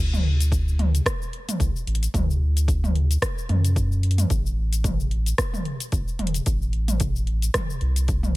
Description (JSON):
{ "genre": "organic downtempo", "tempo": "111 BPM", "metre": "4/4", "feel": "swing 56% on 16ths", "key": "unclear", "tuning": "A4 = 440 Hz", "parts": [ { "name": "round analog bass", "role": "bass", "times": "0.0-8.4 s", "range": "E1 to F#2", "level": "-21 LUFS", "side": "equal", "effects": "tube saturation, sidechain pumping" }, { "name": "deep house drum kit", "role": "drums", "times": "0.1-8.3 s", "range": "hi-hat, rim click, shaker, toms", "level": "-28 LUFS", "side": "equal", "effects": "none" }, { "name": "electronic kick drum", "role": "drums", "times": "0.5-8.2 s", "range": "none", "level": "-26 LUFS", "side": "equal", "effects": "overdrive" } ], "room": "little or no reverb", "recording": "none", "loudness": "-21 LUFS", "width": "side -19 dB against mid", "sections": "0.0-8.4 A section", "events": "none", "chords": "none" }